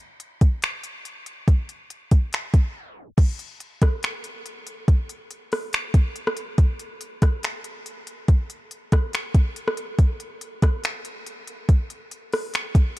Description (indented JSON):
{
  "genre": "hip hop",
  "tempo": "141 BPM",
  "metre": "4/4",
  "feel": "half-time",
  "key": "none",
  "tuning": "none",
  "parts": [
    { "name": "smooth R&B drum kit", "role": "drums", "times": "0.2-13.0 s", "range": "crash cymbal, finger snaps, hi-hat, kick drum, rim click", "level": "-20 LUFS", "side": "equal", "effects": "overdrive, vintage 12-bit sampler grit" }
  ],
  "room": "little or no reverb",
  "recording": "dark, warm production, tape stop",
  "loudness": "-20 LUFS",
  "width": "side -19 dB against mid",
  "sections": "0.0-3.2 A section; 3.2-13.0 B section",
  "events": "break 2.8-3.2; tape stop 2.8-3.2",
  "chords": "none",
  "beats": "0.20 0.62 1.05 | 1.48 1.90 2.33 2.75 | 3.18 3.60 4.03 4.46 | 4.88 5.31 5.73 6.16 | 6.58 7.01 7.43 7.86 | 8.29 8.71 9.14 9.56 | 9.99 10.41 10.84 11.26 | 11.69 12.11 12.54 12.96"
}